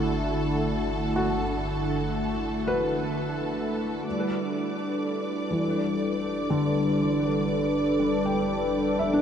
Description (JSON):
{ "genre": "ambient", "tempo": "60 BPM", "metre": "4/4", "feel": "straight", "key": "G major", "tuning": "A4 = 440 Hz", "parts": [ { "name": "warm analog pad", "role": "sustained chords", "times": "0.0-9.2 s", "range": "D3 to B4", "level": "-26 LUFS", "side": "equal", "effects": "chorus, shimmer reverb" }, { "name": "felt-muted upright piano", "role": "arpeggios", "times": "0.0-9.2 s", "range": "D3 to G5", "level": "-29 LUFS", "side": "equal", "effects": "tape echo, shimmer reverb" }, { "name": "deep rumbling drone", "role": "bass", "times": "0.0-9.2 s", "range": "G1", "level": "-38 LUFS", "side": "equal", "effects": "built-in reverb, tube saturation" }, { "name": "clear studio violin section", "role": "texture", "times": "0.0-9.2 s", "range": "A4 to D6", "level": "-34 LUFS", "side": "equal", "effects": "shimmer reverb" } ], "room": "wet huge ambient reverb, RT60 9.7 s", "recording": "dark, warm production", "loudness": "-24 LUFS", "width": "side -8 dB against mid", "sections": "0.0-4.1 A section; 4.1-9.2 B section", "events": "none", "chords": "0.0 Gmaj7" }